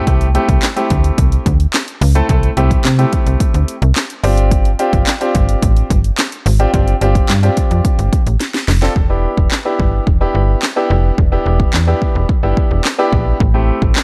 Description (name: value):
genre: dance-pop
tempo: 108 BPM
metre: 4/4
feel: straight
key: unclear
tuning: A4 = 440 Hz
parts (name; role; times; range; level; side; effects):
- clear baby grand piano; accompaniment; 0.0-13.9 s; A3 to A4; -21 LUFS; equal; sidechain pumping
- slap-like FM bass; bass; 0.1-13.9 s; E1 to C3; -16 LUFS; equal; sidechain pumping
- house drum kit; drums; 0.1-14.0 s; handclaps, hi-hat, kick drum, snare drum; -18 LUFS; equal; overdrive
room: digital ambience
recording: dark, warm production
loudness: -14 LUFS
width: mono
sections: 0.0-9.0 A section; 9.0-14.0 B section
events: drum fill 8.4-9.0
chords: 0.1 C6; 4.2 G7sus4; 9.0 Em7; 13.4 Am7